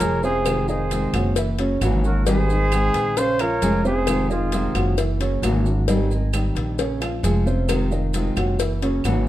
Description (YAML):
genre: latin, Cuban son and guajira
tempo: 133 BPM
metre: 4/4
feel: straight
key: unclear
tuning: A4 = 436 Hz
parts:
  - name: trumpet with bucket mute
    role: melody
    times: 0.0-4.9 s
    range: F4 to C5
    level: -24 LUFS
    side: equal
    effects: none
  - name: bright silver concert flute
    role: second line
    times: 0.0-4.9 s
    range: Ab4 to F5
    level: -30 LUFS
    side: right 5 dB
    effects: none
  - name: nylon-string guitar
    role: accompaniment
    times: 0.0-9.3 s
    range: C3 to Ab4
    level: -26 LUFS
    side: left 1 dB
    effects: none
  - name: dark grand piano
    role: arpeggios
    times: 0.0-9.3 s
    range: C3 to Ab5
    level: -26 LUFS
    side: right 2 dB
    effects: none
  - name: upright bass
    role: bass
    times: 0.0-9.3 s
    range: F1 to Bb1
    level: -22 LUFS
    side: equal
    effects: none
  - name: cowbell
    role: percussion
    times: 0.0-9.3 s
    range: none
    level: -29 LUFS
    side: left 7 dB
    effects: none
  - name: maracas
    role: percussion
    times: 0.0-9.3 s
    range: none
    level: -38 LUFS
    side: right 8 dB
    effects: none
  - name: claves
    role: percussion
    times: 0.5-9.3 s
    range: none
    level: -35 LUFS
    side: right 9 dB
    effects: none
room: light reverb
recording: dark, warm production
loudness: -18 LUFS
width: side -14 dB against mid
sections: 0.0-9.3 A section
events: none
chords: 0.5 Fm7; 1.4 Gb7; 2.3 Abmaj7; 3.2 Bbm7; 4.1 Fm7; 5.0 Gb7; 5.9 Abmaj7; 6.8 Bbm7; 7.7 Fm7; 8.6 Gb7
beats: 0.01 | 0.46 0.91 1.36 1.81 | 2.27 2.72 3.17 3.62 | 4.07 4.53 4.98 5.43 | 5.88 6.33 6.79 7.24 | 7.69 8.14 8.59 9.05